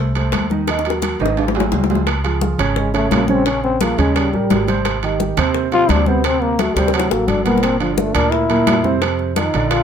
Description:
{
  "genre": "Afro-Cuban jazz",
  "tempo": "173 BPM",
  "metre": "4/4",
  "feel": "straight",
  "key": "unclear",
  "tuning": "A4 = 441 Hz",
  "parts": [
    { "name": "dark baby grand piano", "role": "accompaniment", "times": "0.0-9.8 s", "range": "Bb2 to Eb5", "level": "-20 LUFS", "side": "right 5 dB", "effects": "none" },
    { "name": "upright bass", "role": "bass", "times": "0.0-9.8 s", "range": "G1 to F2", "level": "-22 LUFS", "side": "equal", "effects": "none" },
    { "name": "congas", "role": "percussion", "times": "0.2-9.8 s", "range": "none", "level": "-23 LUFS", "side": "left 4 dB", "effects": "none" },
    { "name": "timbales", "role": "percussion", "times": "0.2-9.8 s", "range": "none", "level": "-23 LUFS", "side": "right 6 dB", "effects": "none" },
    { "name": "bongos", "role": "percussion", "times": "0.3-9.8 s", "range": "none", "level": "-24 LUFS", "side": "left 8 dB", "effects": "none" },
    { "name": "growling trombone", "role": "melody", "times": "2.8-9.8 s", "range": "F3 to F4", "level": "-19 LUFS", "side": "left 4 dB", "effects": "none" }
  ],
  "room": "light reverb",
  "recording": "none",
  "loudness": "-14 LUFS",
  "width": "side -8 dB against mid",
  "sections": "0.0-2.1 A section; 2.1-9.8 B section",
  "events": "drum fill 0.7-2.1, 6.8-7.6; trombone solo 2.1-9.8",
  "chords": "0.0 F (rootless); 0.7 Ebm; 1.4 Dbadd11/Ab; 2.1 Db6; 3.5 Bbm7; 4.2 Eb6; 4.8 Abmaj7; 6.2 D7; 7.6 Gm7; 9.0 F5"
}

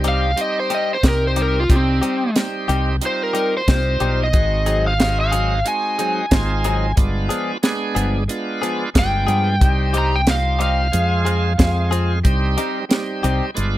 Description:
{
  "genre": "straight-eighth soul blues",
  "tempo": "91 BPM",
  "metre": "4/4",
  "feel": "swing 54% on 16ths",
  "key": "C harmonic minor",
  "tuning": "A4 = 441 Hz",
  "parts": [
    { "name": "bright tonewheel organ", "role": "accompaniment", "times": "0.0-13.8 s", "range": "G3 to Ab4", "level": "-24 LUFS", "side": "right 3 dB", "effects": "slow rotary speaker, overdrive" },
    { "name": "direct-recorded clean electric guitar", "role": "stabs", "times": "0.0-13.4 s", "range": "F3 to Ab4", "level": "-24 LUFS", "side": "left 5 dB", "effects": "wide subtle chorus" },
    { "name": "fingered electric bass", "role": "bass", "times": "0.0-13.8 s", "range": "G1 to G2", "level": "-20 LUFS", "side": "equal", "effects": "none" },
    { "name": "tight funk drum kit", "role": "drums", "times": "0.0-13.7 s", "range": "hi-hat, kick drum, snare drum", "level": "-18 LUFS", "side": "equal", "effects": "none" },
    { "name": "overdriven slide guitar", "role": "melody", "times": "0.1-11.9 s", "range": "C4 to Bb5", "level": "-21 LUFS", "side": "equal", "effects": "none" }
  ],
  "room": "little or no reverb",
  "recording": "none",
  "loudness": "-16 LUFS",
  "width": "side -14 dB against mid",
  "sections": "0.0-13.8 A section",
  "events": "none",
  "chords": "0.0 Cm; 4.3 Ab7; 7.0 G7b9; 9.6 Cm; 10.9 Fm; 12.2 Cm"
}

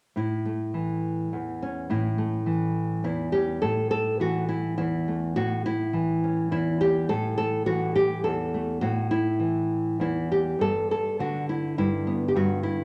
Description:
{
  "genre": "folk, solo fingerstyle acoustic guitar",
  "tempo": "104 BPM",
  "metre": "3/4",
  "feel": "rubato",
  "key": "A mixolydian",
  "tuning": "A4 = 439 Hz",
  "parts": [
    { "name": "nylon-string guitar", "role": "solo", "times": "0.2-12.8 s", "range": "E2 to A4", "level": "-26 LUFS", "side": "equal", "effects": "none" }
  ],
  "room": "wet large studio reverb, RT60 1.4 s",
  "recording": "none",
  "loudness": "-26 LUFS",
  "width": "mono",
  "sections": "0.2-3.6 A section; 3.6-12.8 B section",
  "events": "none",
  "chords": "0.2 A; 10.6 G5"
}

